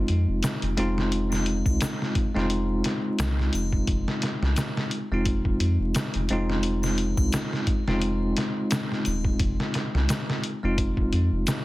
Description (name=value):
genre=trip hop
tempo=87 BPM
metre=4/4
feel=swing 56% on 16ths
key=F minor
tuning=A4 = 440 Hz
part: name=bell-like tine electric piano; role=accompaniment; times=0.0-11.6 s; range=Ab3 to F4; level=-28 LUFS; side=equal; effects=tremolo, tape echo
part: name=soft dub sub bass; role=bass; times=0.0-11.5 s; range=Eb1 to F2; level=-26 LUFS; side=equal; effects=tube saturation
part: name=trip hop sampler-style drum kit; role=drums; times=0.1-11.6 s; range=hi-hat, kick drum, snare drum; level=-27 LUFS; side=equal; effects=none
part: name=tube shaker and triangle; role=percussion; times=0.4-11.6 s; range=none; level=-38 LUFS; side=left 3 dB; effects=none
room=little or no reverb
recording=dense, heavily limited modern master, vinyl crackle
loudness=-23 LUFS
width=side -18 dB against mid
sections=0.0-11.6 A section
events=none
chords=0.0 Fm7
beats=0.43 | 1.12 1.81 2.50 3.19 | 3.88 4.57 5.26 5.95 | 6.64 7.33 8.02 8.71 | 9.40 10.09 10.78 11.47